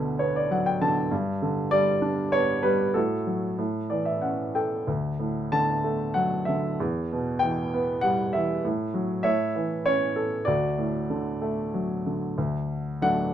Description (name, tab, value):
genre	classical, lyrical solo piano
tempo	96 BPM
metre	3/4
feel	rubato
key	D major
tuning	A4 = 439 Hz
part	warm baby grand piano	solo	0.0-13.3 s	D2 to A5	-24 LUFS	equal	none
room	light reverb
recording	none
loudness	-24 LUFS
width	side -10 dB against mid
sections	0.0-12.4 A section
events	grand piano fill 0.0-1.1, 3.6-4.9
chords	0.0 Bm/D; 1.1 G; 3.0 F#m/A; 3.6 A; 4.9 D; 6.8 Em; 8.6 F#m/A; 9.2 A; 10.5 D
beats	0.51 | 1.13 1.73 2.33 | 2.96 3.59 4.22 | 4.88 5.53 6.16 | 6.80 7.43 8.04 | 8.64 9.24 9.86 | 10.48 11.10 11.73 | 12.38 13.02